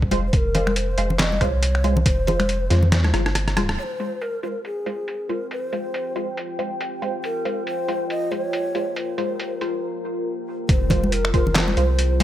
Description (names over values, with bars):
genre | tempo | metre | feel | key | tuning
deep dubstep | 139 BPM | 4/4 | swing 57% on 16ths, half-time | F minor | A4 = 437 Hz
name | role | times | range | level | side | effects
soft dub sub bass | bass | 0.0-3.8, 10.7-12.2 s | F1 to F2 | -21 LUFS | equal | none
electronic kick drum | drums | 0.0-2.2, 10.7-11.4 s | none | -21 LUFS | equal | overdrive
filtered dub chord stab | stabs | 0.1-12.2 s | Ab3 to C5 | -29 LUFS | right 1 dB | phaser, wide subtle chorus, dub echo
trip hop sampler-style drum kit | drums | 0.1-12.2 s | finger snaps, handclaps, hi-hat, rim click, snare drum | -25 LUFS | equal | overdrive, low-pass filter on snare, low-pass filter on hats
congas | percussion | 0.1-3.7, 10.9-12.2 s | none | -26 LUFS | left 2 dB | none
breathy mellow long shakuhachi | melody | 0.3-12.2 s | Ab4 to Eb5 | -28 LUFS | left 1 dB | dub echo
deep dark ambient pad | sustained chords | 5.1-12.2 s | F4 to G5 | -29 LUFS | left 1 dB | chorus, built-in reverb
room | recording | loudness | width
light reverb | none | -20 LUFS | side -12 dB against mid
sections
0.0-3.8 A section; 3.8-10.7 B section; 10.7-12.2 C section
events
drum fill 2.9-3.8; break 3.4-3.8, 9.8-10.7; band accent 3.7; drop 10.7-12.2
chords
0.0 Fm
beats
| 0.33 0.76 1.20 1.63 | 2.06 2.49 2.92 3.35 | 3.78 4.22 4.65 5.08 | 5.51 5.94 6.37 6.81 | 7.24 7.67 8.10 8.53 | 8.96 9.40 9.83 10.26 | 10.69 11.12 11.55 11.99